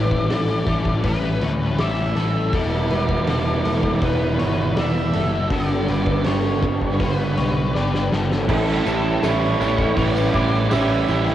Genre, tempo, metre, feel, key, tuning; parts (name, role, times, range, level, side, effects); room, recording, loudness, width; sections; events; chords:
rock, shoegaze and dream pop; 81 BPM; 4/4; straight; A mixolydian; A4 = 442 Hz
octave-fuzz lead guitar; melody; 0.0-11.2 s; A4 to E5; -28 LUFS; equal; distortion, cassette tape, tape echo
direct-recorded clean electric guitar; arpeggios; 0.0-11.3 s; G4 to D6; -30 LUFS; left 6 dB; ensemble chorus, tape echo
crunchy overdriven guitar; riff; 0.0-11.3 s; E2 to G4; -24 LUFS; left 5 dB; ensemble chorus
crunchy overdriven guitar; riff; 0.0-11.3 s; E2 to G4; -23 LUFS; right 5 dB; reverse reverb
fuzz picked electric bass; bass; 0.0-11.3 s; E1 to D2; -24 LUFS; equal; overdrive, tube saturation
loose indie drum kit; drums; 0.1-11.3 s; crash cymbal, hi-hat, kick drum, snare drum; -28 LUFS; equal; cassette tape
tambourine; percussion; 8.7-11.3 s; -46 LUFS; right 7 dB
light reverb, small room reverb; home recording on cassette; -18 LUFS; side -12 dB against mid
0.0-8.5 A section; 8.5-11.3 B section
drum fill 7.7-8.5
0.0 A7sus4; 2.5 Em7; 5.5 G; 8.5 A7sus4